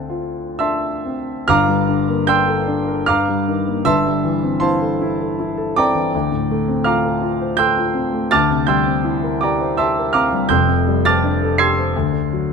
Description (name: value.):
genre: classical, impressionist solo piano.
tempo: 58-85 BPM.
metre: 3/4.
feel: rubato.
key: G dorian.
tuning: A4 = 440 Hz.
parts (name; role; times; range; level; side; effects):
warm concert grand piano; solo; 0.0-12.5 s; F1 to C7; -15 LUFS; equal; none.
room: light reverb.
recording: close, detailed microphones.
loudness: -15 LUFS.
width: side -5 dB against mid.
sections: 0.0-1.5 A section; 1.5-12.5 B section.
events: none.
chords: 0.0 Dm7; 1.5 Gm9; 3.1 Gm7; 3.8 Am7/G; 6.1 C9/D; 10.5 F69; 11.9 D7.